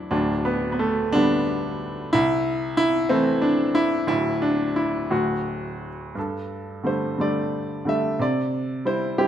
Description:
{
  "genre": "classical, lyrical solo piano",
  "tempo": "56-62 BPM (dotted quarters)",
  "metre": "6/8",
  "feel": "rubato",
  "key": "G major",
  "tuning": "A4 = 440 Hz",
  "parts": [
    { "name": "bright upright piano", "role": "solo", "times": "0.0-9.3 s", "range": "D1 to E5", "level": "-21 LUFS", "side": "equal", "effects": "none" }
  ],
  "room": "moderate scoring stage reverb, RT60 1.7 s",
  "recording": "minimal, uncompressed stereo recording",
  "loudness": "-21 LUFS",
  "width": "side -10 dB against mid",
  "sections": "0.0-6.2 A section; 6.2-9.3 B section",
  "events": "none",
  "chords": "0.1 G/D; 2.1 C6; 4.1 N.C.; 6.2 Gsus2; 8.2 C",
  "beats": "| 0.12 1.14 | 2.13 3.10 | 4.08 5.11 | 6.16 7.19 | 8.19 9.18"
}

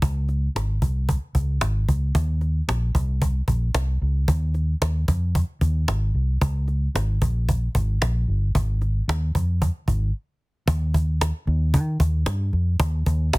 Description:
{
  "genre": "jangly indie pop",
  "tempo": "112 BPM",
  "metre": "4/4",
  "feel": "straight",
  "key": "unclear",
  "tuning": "A4 = 439 Hz",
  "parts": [
    { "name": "vintage muted fingered electric bass", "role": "bass", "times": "0.0-13.4 s", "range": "G1 to Eb3", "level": "-21 LUFS", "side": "equal", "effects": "none" },
    { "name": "cajon", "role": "drums", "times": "0.0-13.4 s", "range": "none", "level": "-23 LUFS", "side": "equal", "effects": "none" }
  ],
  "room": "little or no reverb",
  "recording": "dense, heavily limited modern master",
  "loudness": "-20 LUFS",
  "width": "side -23 dB against mid",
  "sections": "0.0-10.7 A section; 10.7-13.4 B section",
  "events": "break 10.1-10.7",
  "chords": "none",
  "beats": "| 0.01 0.55 1.08 1.61 | 2.15 2.68 3.21 3.75 | 4.28 4.82 5.35 5.88 | 6.42 6.95 7.48 8.02 | 8.55 9.08 9.61 10.15 | 10.68 11.21 11.74 12.27 | 12.80 13.33"
}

